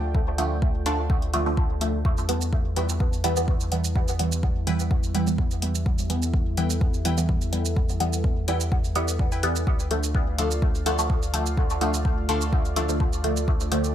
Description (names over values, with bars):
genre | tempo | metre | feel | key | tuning
dub techno | 126 BPM | 4/4 | straight | E phrygian | A4 = 441 Hz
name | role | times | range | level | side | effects
dark analog pad | sustained chords | 0.0-13.9 s | G3 to G5 | -35 LUFS | right 1 dB | chorus, sidechain pumping
filtered dub chord stab | stabs | 0.0-13.9 s | D3 to B3 | -27 LUFS | right 1 dB | phaser, sidechain pumping, dub echo
warm sub bass | bass | 0.0-13.9 s | D2 to E2 | -28 LUFS | equal | sidechain pumping
wind-like tuned noise texture | texture | 0.0-2.1 s | A4 | -44 LUFS | right 7 dB | none
electronic kick drum | drums | 0.1-13.6 s | none | -24 LUFS | equal | none
electronic hi-hat and shaker | drums | 0.4-13.9 s | none | -32 LUFS | right 2 dB | none
wavetable chord stab | riff | 0.9-12.9 s | D4 to G5 | -36 LUFS | left 3 dB | sidechain pumping, dub echo
room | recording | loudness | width
light reverb | none | -22 LUFS | side -10 dB against mid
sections
0.0-2.1 A section; 2.1-13.9 A section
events
none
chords
0.0 Dm; 2.1 Em; 9.7 Dm